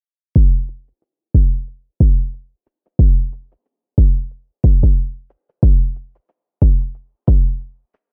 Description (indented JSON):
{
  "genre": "organic downtempo",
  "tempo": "91 BPM",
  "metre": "4/4",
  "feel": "swing 58% on 16ths",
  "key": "none",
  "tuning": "none",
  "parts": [
    { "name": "cabasa", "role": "drums", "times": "0.4-8.1 s", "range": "none", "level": "-63 LUFS", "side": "equal", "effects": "overdrive" },
    { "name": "electronic kick drum", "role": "drums", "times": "0.4-7.4 s", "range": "none", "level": "-15 LUFS", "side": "equal", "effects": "overdrive" }
  ],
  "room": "little or no reverb",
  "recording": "low-pass filter",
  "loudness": "-17 LUFS",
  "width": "mono",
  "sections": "0.4-8.1 A section",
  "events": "filter sweep 0.4-8.1",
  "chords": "none"
}